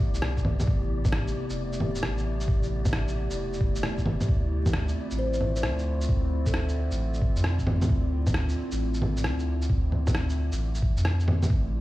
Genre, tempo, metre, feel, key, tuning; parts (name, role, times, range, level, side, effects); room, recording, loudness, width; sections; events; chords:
future garage; 133 BPM; 4/4; swing 66% on 16ths; A4 = 439 Hz
warbly tape-like pad; sustained chords; 0.0-11.8 s; C3 to G4; -33 LUFS; equal; chorus, built-in reverb, phaser, sidechain pumping
warm sub bass; bass; 0.0-11.8 s; E1 to F2; -28 LUFS; equal; sidechain pumping
electronic kick drum; drums; 0.0-11.6 s; -26 LUFS; equal
wind-like tuned noise texture; texture; 0.0-11.5 s; D5; -44 LUFS; left 4 dB; built-in reverb
electronic shaker, rim click and bongos; drums; 0.1-11.5 s; -30 LUFS; equal
kalimba; melody; 5.2-7.1 s; A4 to C5; -35 LUFS; left 1 dB; dub echo
little or no reverb; played on a big sound system in a bare room, stone room reverb, vinyl crackle; -24 LUFS; side -17 dB against mid
0.0-11.5 A section
kick drops out 11.0-11.5
0.0 Am9; 4.3 Dm9